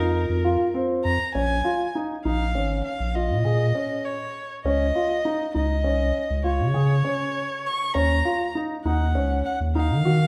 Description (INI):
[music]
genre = contemporary instrumental, chamber music in an uneven meter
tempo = 200 BPM (eighths)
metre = 11/8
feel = straight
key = Bb minor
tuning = A4 = 440 Hz
[part]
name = dark violin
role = melody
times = 0.0-10.3 s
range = Bb4 to Db6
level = -30 LUFS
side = equal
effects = none
[part]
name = vibraphone with hard mallets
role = second line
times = 0.0-1.0 s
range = F4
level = -30 LUFS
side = equal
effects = none
[part]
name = dark baby grand piano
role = arpeggios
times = 0.0-10.2 s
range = C4 to Ab4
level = -28 LUFS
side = equal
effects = none
[part]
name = warm sub bass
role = bass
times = 0.0-10.3 s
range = Ab1 to Eb3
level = -26 LUFS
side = equal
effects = none
[sound]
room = moderate recital hall reverb, RT60 1.6 s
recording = none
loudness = -24 LUFS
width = mono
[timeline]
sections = 0.0-1.4 A section; 1.4-10.3 B section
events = none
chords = 0.0 F7sus4; 1.4 Bbm7; 4.7 Dbsus2; 8.0 Ebm7